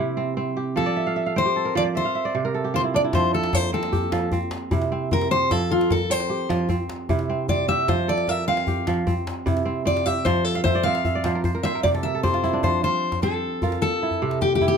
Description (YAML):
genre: west african traditional, West African string and xylophone music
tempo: 101 BPM (dotted quarters)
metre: 12/8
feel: straight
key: F major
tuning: A4 = 440 Hz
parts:
  - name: kora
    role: arpeggios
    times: 0.0-14.8 s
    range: C3 to G5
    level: -24 LUFS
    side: right 4 dB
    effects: none
  - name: fingerpicked steel-string acoustic guitar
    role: melody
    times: 0.8-14.8 s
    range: F4 to F5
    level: -23 LUFS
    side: left 2 dB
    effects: none
  - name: djembe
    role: percussion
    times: 3.1-14.7 s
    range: none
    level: -27 LUFS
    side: left 2 dB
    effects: none
room: light reverb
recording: close, detailed microphones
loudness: -20 LUFS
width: side -6 dB against mid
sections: 0.0-12.6 A section; 12.6-14.8 B section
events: steel-string acoustic guitar solo 0.0-12.6; kora fill 0.9-3.1, 10.6-12.6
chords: 0.0 C; 0.8 F; 2.0 N.C.; 3.1 F; 4.3 C; 5.5 F; 6.7 C; 7.9 F; 9.1 C; 10.3 F5; 11.4 N.C.; 12.6 F; 13.8 C